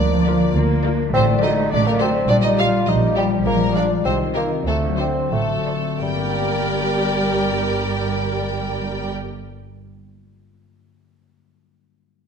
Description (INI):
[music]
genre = cinematic, playful, whimsical film cue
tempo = 86-104 BPM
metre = 2/4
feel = straight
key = G minor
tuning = A4 = 440 Hz
[part]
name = clear studio violin section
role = second line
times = 0.0-9.1 s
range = G4 to G5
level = -28 LUFS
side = left 2 dB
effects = none
[part]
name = mellow bassoon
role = accompaniment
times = 0.0-9.1 s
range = G3 to F4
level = -23 LUFS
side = right 2 dB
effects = none
[part]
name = mellow French horn section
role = sustained chords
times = 0.0-9.1 s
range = F4 to Eb5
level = -27 LUFS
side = left 3 dB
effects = none
[part]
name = concert harp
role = arpeggios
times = 0.0-9.9 s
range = G2 to D5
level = -25 LUFS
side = left 8 dB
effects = none
[part]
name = dark studio cello section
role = bass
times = 0.0-9.1 s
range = G2 to Bb3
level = -24 LUFS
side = right 3 dB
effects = none
[part]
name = warm studio double bass section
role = bass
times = 0.0-9.1 s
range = G1 to D2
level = -24 LUFS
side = right 3 dB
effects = none
[part]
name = rich studio violin section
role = melody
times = 0.3-9.1 s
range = D5 to F5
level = -32 LUFS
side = left 4 dB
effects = none
[part]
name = warm studio viola section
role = accompaniment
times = 0.3-9.1 s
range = F4 to D5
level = -29 LUFS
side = right 2 dB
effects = none
[sound]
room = wet recital hall reverb, RT60 1.4 s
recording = none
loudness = -17 LUFS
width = side -6 dB against mid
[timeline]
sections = 0.0-6.0 A section; 6.0-8.8 B section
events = slowing down 2.9-6.0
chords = 0.0 Bb/D; 1.1 D/A; 2.3 Gm/Bb; 3.5 Bb7; 4.0 Cm; 4.7 D7; 6.0 Gm